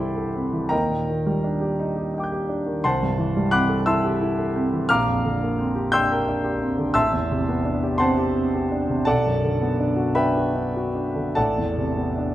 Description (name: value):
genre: classical, impressionist solo piano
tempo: 49-59 BPM (dotted quarters)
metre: 6/8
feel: rubato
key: unclear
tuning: A4 = 440 Hz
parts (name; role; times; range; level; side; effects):
- clear concert grand piano; solo; 0.0-12.3 s; A1 to G6; -20 LUFS; equal; none
room: moderate recital hall reverb, RT60 1.4 s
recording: none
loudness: -20 LUFS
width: side -14 dB against mid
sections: 0.0-12.3 A section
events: none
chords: 0.0 C6; 0.7 Ebmaj7; 2.8 C6; 4.9 Bb69; 7.0 Am11; 9.1 Bm7; 11.4 Amadd9